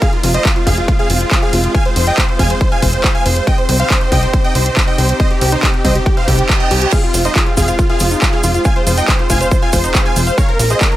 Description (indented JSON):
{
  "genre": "uplifting trance",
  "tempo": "139 BPM",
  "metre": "4/4",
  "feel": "straight",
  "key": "F minor",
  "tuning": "A4 = 436 Hz",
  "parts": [
    { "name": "supersaw chords", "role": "melody", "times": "0.0-11.0 s", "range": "Eb4 to Ab5", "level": "-19 LUFS", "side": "right 1 dB", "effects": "sidechain pumping, tape echo" },
    { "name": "dark concert grand piano", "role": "second line", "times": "0.0-11.0 s", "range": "F4 to Ab5", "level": "-25 LUFS", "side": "equal", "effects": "none" },
    { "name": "lush unison pad", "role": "sustained chords", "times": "0.0-11.0 s", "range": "C3 to G4", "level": "-23 LUFS", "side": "left 1 dB", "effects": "chorus, sidechain pumping" },
    { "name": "big-room dance drum kit", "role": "drums", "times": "0.0-11.0 s", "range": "crash cymbal, handclaps, hi-hat", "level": "-19 LUFS", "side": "equal", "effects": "none" },
    { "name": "electronic kick drum", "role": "drums", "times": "0.0-10.9 s", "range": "none", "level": "-14 LUFS", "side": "equal", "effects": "none" },
    { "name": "plucky analog bass", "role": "bass", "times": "0.2-10.7 s", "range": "F1 to C2", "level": "-15 LUFS", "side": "equal", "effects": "sidechain pumping" },
    { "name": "reverse cymbal", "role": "sound effects", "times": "6.3-6.9 s", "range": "none", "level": "-25 LUFS", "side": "right 5 dB", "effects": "none" },
    { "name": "analog pluck", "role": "arpeggios", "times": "6.9-11.0 s", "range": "Eb4 to F5", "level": "-23 LUFS", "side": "left 2 dB", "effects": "chorus, sidechain pumping, tape echo" },
    { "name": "tube shaker", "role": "percussion", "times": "6.9-10.9 s", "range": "none", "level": "-25 LUFS", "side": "right 3 dB", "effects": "none" }
  ],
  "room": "little or no reverb",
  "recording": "none",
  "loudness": "-11 LUFS",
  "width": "side -14 dB against mid",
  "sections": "0.0-11.0 A section",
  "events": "reverse cymbal 6.3-6.9",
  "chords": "0.0 Fm; 3.5 Cm; 6.9 Fm; 10.4 Bbsus4"
}